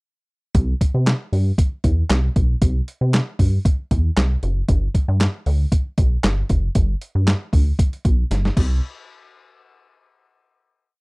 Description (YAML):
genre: early-eighties boogie funk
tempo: 116 BPM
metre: 4/4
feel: straight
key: C major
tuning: A4 = 435 Hz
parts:
  - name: rubbery square bass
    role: bass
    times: 0.5-8.8 s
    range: F#1 to C3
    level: -18 LUFS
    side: equal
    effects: none
  - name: boom bap sampler-style drum kit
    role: drums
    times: 0.5-8.7 s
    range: crash cymbal, handclaps, hi-hat, kick drum, snare drum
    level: -18 LUFS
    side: equal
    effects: overdrive
room: little or no reverb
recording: dry, close 1970s-style studio recording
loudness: -17 LUFS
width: side -35 dB against mid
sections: 0.5-8.8 verse; 8.8-10.9 final hit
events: drum fill 8.3-8.8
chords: none